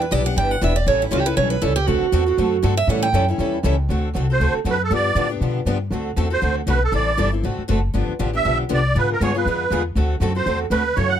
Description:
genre	acoustic string swing (jazz manouche)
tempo	237 BPM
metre	4/4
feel	swing 56% on 8ths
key	D mixolydian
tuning	A4 = 440 Hz
part	picked steel-string acoustic guitar	second line	0.0-3.3 s	E4 to G5	-21 LUFS	right 6 dB	none
part	picked old ladder-braced acoustic guitar	accompaniment	0.0-11.2 s	D3 to B4	-27 LUFS	right 7 dB	none
part	picked steel-string acoustic guitar	accompaniment	0.0-11.2 s	C#3 to A4	-26 LUFS	left 7 dB	none
part	upright bass	bass	0.0-11.2 s	E1 to B2	-21 LUFS	equal	none
part	musette accordion	melody	4.3-11.2 s	A4 to F#5	-21 LUFS	right 3 dB	none
room	little or no reverb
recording	close, detailed microphones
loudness	-17 LUFS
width	side -9 dB against mid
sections	0.0-3.9 A section; 3.9-11.2 B section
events	steel-string acoustic guitar solo 0.0-3.9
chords	0.0 Em7; 0.9 A7; 1.9 D7; 2.9 A7; 3.9 D7; 4.9 G7; 5.9 D7; 6.9 Am7; 7.4 D7; 7.9 G7; 8.9 G#dim7; 10.0 D7

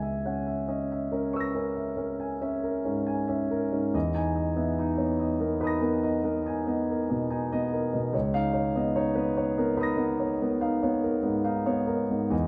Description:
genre	classical, impressionist solo piano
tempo	71 BPM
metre	5/4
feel	rubato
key	unclear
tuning	A4 = 439 Hz
part	warm concert grand piano	solo	0.0-12.5 s	C#2 to A#6	-28 LUFS	equal	none
room	moderate recital hall reverb, RT60 1.8 s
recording	close, detailed microphones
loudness	-28 LUFS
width	mono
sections	0.0-12.5 A section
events	none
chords	0.0 C#m6; 3.9 Emaj7#11; 8.1 C#13

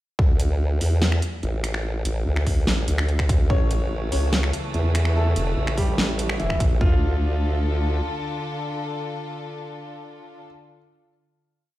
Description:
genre	heavy wobble dubstep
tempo	145 BPM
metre	4/4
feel	half-time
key	D harmonic minor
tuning	A4 = 441 Hz
part	formant-sweep wobble bass	bass	0.2-8.0 s	E1 to E2	-22 LUFS	equal	chorus, overdrive
part	dubstep drum kit	drums	0.2-6.9 s	kick drum, toms	-20 LUFS	equal	none
part	dubstep drum kit	drums	0.4-6.7 s	finger snaps, hi-hat, snare drum	-27 LUFS	equal	none
part	clear grand piano	melody	3.5-10.5 s	E3 to C#5	-31 LUFS	equal	ping-pong delay
part	warm chamber string section	sustained chords	3.5-10.5 s	C#3 to A4	-31 LUFS	equal	sidechain pumping
room	little or no reverb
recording	played on a big sound system in a bare room, stone room reverb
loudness	-20 LUFS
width	side -16 dB against mid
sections	0.2-6.8 drop; 6.8-10.1 final chord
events	drop 0.2-6.8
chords	0.2 Dsus2; 3.5 A; 6.8 Dm

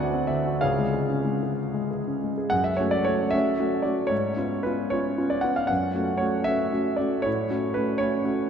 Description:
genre	classical, romantic character piece for solo piano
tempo	62-85 BPM (dotted quarters)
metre	6/8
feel	rubato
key	F# minor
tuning	A4 = 439 Hz
part	warm concert grand piano	solo	0.0-8.5 s	C#2 to F#5	-23 LUFS	equal	none
room	wet cathedral reverb, RT60 6.0 s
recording	in a vast, echoing space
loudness	-23 LUFS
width	side -7 dB against mid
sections	0.0-2.5 A section; 2.5-8.5 B section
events	none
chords	0.0 D7; 0.6 C#; 2.5 F#m; 4.1 C#7/G#; 5.7 F#m; 7.3 F#m/A

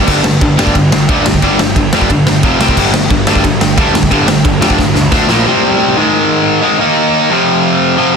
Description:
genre	punk rock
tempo	179 BPM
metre	4/4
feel	straight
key	unclear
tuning	A4 = 439 Hz
part	distorted electric guitar	riff	0.0-8.2 s	F2 to Eb4	-10 LUFS	equal	overdrive
part	fuzz picked electric bass	bass	0.0-5.4 s	F1 to F2	-17 LUFS	equal	overdrive
part	raw garage drum kit	drums	0.1-5.4 s	crash cymbal, kick drum, ride cymbal, snare drum	-14 LUFS	equal	none
room	little or no reverb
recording	dense, heavily limited modern master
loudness	-8 LUFS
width	side -6 dB against mid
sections	0.0-5.5 A section; 5.5-8.2 B section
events	drum fill 4.8-5.5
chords	0.0 G5; 2.4 F5; 2.6 C5; 2.8 G5; 5.1 D5; 5.3 Bb5; 5.5 C5; 6.0 Ab5; 6.8 Eb5; 7.3 F5

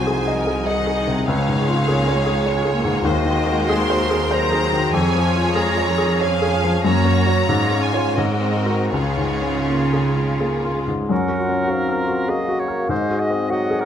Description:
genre	classical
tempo	77-103 BPM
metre	3/4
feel	rubato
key	Db major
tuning	A4 = 440 Hz
part	clear baby grand piano	melody	0.0-13.9 s	C2 to Eb5	-20 LUFS	left 2 dB	none
part	rich symphonic violin section	melody	0.0-10.7 s	Db5 to C6	-26 LUFS	equal	none
part	clear symphonic violin section	second line	0.0-10.9 s	F4 to F5	-26 LUFS	left 1 dB	none
part	warm symphonic viola section	accompaniment	0.0-11.1 s	Eb3 to Ab4	-27 LUFS	right 2 dB	none
part	clear symphonic cello section	bass	0.0-10.9 s	C2 to Db3	-23 LUFS	right 2 dB	none
part	clear oboe	second line	11.1-13.9 s	Bb4 to Eb5	-26 LUFS	right 2 dB	none
part	concert flute	second line	11.1-13.9 s	Eb5 to Gb5	-28 LUFS	equal	none
part	warm clarinet	second line	11.1-13.9 s	Eb4 to Ab4	-31 LUFS	equal	none
part	dark bassoon	accompaniment	11.1-13.9 s	Gb3 to Db4	-27 LUFS	right 2 dB	none
room	moderate recital hall reverb, RT60 1.5 s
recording	close, detailed microphones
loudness	-17 LUFS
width	side -9 dB against mid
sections	0.0-11.1 A section; 11.1-13.9 B section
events	none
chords	0.0 Ab7/C; 1.3 Db; 3.0 Ab7/Eb; 4.9 Db/F; 6.8 Gb; 7.5 Db/Ab; 8.2 Ab9; 8.9 Db; 11.1 Gb; 12.9 Ab7

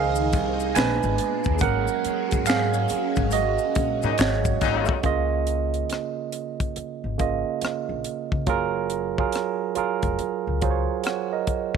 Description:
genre	R&B, neo-soul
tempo	70 BPM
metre	4/4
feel	swing 64% on 16ths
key	Db major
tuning	A4 = 442 Hz
part	barky tine electric piano	accompaniment	0.0-11.8 s	Db3 to Ab5	-25 LUFS	right 11 dB	overdrive
part	phased string machine	sustained chords	0.0-5.0 s	Bb2 to C5	-30 LUFS	left 2 dB	ensemble chorus, phaser
part	upright bass	bass	0.0-10.8 s	F1 to Ab2	-27 LUFS	left 2 dB	none
part	maracas and finger snaps	percussion	0.2-5.0 s	none	-33 LUFS	left 15 dB	none
part	tight funk drum kit	drums	0.3-11.8 s	finger snaps, hi-hat, kick drum, rim click, snare drum	-26 LUFS	left 2 dB	none
part	clear horn section	stabs	4.0-5.0 s	Bb2 to Eb4	-26 LUFS	left 14 dB	none
room	light reverb, small room ambience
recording	1960s-style stereo with parts hard left and right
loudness	-22 LUFS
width	side -6 dB against mid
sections	0.0-5.0 A section; 5.0-11.8 B section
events	tine electric piano solo 0.0-5.0; band accent 1.6-5.0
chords	0.0 Dbmaj13; 0.8 Bb7b9; 1.6 Ab9sus4; 5.0 Db69; 8.5 Gbmaj9

